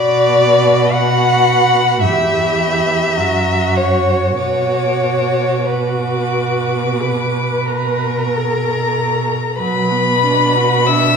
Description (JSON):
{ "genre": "classical, slow romantic movement for string quartet", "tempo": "41-55 BPM", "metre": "4/4", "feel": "rubato", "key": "B minor", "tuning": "A4 = 439 Hz", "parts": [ { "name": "rich violin", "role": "melody", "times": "0.0-11.2 s", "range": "A#5 to E6", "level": "-20 LUFS", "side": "left 5 dB", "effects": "none" }, { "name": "rich violin", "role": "second line", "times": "0.0-11.2 s", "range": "A#4 to F#5", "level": "-16 LUFS", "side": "left 2 dB", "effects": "none" }, { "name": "warm viola", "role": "accompaniment", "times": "0.0-11.2 s", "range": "F#3 to B4", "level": "-20 LUFS", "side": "right 3 dB", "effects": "none" }, { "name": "warm cello", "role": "bass", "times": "0.0-11.2 s", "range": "E2 to B2", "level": "-19 LUFS", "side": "right 3 dB", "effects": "none" } ], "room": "wet recital hall reverb, RT60 1.4 s", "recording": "heard from further back in the room", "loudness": "-13 LUFS", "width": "side -6 dB against mid", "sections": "0.0-9.6 A section; 9.6-11.2 A section", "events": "none", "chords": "0.0 Bm; 2.0 Em; 3.2 F#; 4.4 Bm" }